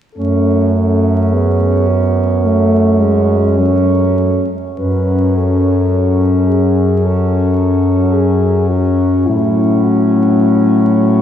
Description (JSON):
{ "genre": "classical, lyrical piece for horn quartet", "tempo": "53 BPM", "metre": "4/4", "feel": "rubato", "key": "F# minor", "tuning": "A4 = 439 Hz", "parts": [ { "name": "mellow French horn", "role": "melody", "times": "0.2-11.2 s", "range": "E4 to B4", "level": "-21 LUFS", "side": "left 4 dB", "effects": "none" }, { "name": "clear French horn", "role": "second line", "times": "0.2-11.2 s", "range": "C#4", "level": "-17 LUFS", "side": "right 1 dB", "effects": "none" }, { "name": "dark French horn", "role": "accompaniment", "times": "0.2-11.2 s", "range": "F#3 to B3", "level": "-18 LUFS", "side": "equal", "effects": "none" }, { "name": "warm French horn", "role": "bass", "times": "0.2-11.2 s", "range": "F#2 to A2", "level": "-14 LUFS", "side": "equal", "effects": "none" } ], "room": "wet cathedral reverb, RT60 4.2 s", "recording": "vinyl crackle, small room reverb", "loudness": "-11 LUFS", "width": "side -9 dB against mid", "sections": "0.2-4.8 A section; 4.8-11.2 B section", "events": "none", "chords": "0.2 F#m; 9.3 F#m/A" }